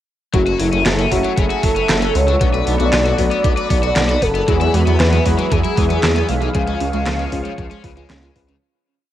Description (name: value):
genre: synthwave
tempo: 116 BPM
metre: 4/4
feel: straight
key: F# minor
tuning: A4 = 440 Hz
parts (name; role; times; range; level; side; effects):
- warm velvety synth lead; melody; 0.3-8.1 s; E4 to E#5; -20 LUFS; right 1 dB; chorus, cassette tape, analog delay, shimmer reverb
- phased analog pad; sustained chords; 0.8-8.6 s; G#4 to C#6; -27 LUFS; right 2 dB; phaser, chorus, sidechain pumping, cassette tape, shimmer reverb
- cranked stack guitar; riff; 0.3-8.6 s; C#3 to B4; -25 LUFS; left 9 dB; overdrive, lush chorus, cassette tape, tape echo, shimmer reverb
- warm electric grand piano; stabs; 0.3-8.6 s; E#3 to B4; -25 LUFS; left 9 dB; cassette tape, shimmer reverb
- wide detuned saw bass; bass; 0.3-8.6 s; F#1 to E2; -18 LUFS; equal; chorus, sidechain pumping
- electronic kick drum; drums; 0.3-8.5 s; none; -20 LUFS; equal; overdrive, cassette tape
- pop drum kit; drums; 0.3-8.6 s; handclaps, hi-hat, snare drum; -21 LUFS; equal; overdrive, cassette tape
- thumb-piano-like synth pluck; arpeggios; 4.5-8.5 s; E3 to E#4; -26 LUFS; right 7 dB; chorus, cassette tape, tape echo
room: light reverb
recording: home recording on cassette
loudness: -14 LUFS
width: side -12 dB against mid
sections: 0.3-8.6 chorus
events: fade-out 5.9-8.6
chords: 0.3 F#m7; 2.4 Bm7; 4.5 Eadd9; 6.5 C#